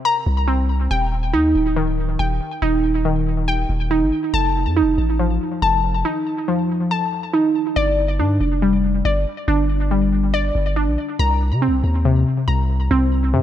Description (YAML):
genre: hip hop, drill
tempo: 140 BPM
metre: 4/4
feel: half-time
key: G minor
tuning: A4 = 442 Hz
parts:
  - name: glassy wavetable pluck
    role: arpeggios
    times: 0.0-13.4 s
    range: C3 to Bb5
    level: -19 LUFS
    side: equal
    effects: chorus, tape echo
  - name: long sustained 808-style bass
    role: bass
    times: 0.3-13.4 s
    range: D1 to C3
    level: -19 LUFS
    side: equal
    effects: none
room: light reverb, digital ambience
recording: none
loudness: -17 LUFS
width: side -11 dB against mid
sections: 0.0-7.8 A section; 7.8-13.4 B section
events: none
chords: 0.0 C7(no3); 0.9 Eb; 4.3 F7; 7.8 G5; 11.2 Cm7